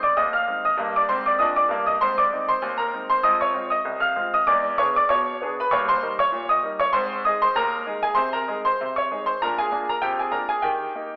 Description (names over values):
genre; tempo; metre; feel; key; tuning
ragtime piano; 97 BPM; 2/4; swing 56% on 16ths; Ab major from 3.2 s; A4 = 441 Hz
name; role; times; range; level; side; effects
clear grand piano; solo; 0.0-11.2 s; C2 to F6; -19 LUFS; equal; none
room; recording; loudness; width
wet large studio reverb, RT60 1.5 s; band playing live in one room, telephone sound; -19 LUFS; side -28 dB against mid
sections
0.0-11.2 A section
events
none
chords
0.0 Ab; 0.8 Eb/G; 2.0 Ab; 3.2 Fm; 4.5 E7; 5.7 Eb7; 6.9 Ab; 8.2 Ab/C; 9.4 Bb7; 10.7 Eb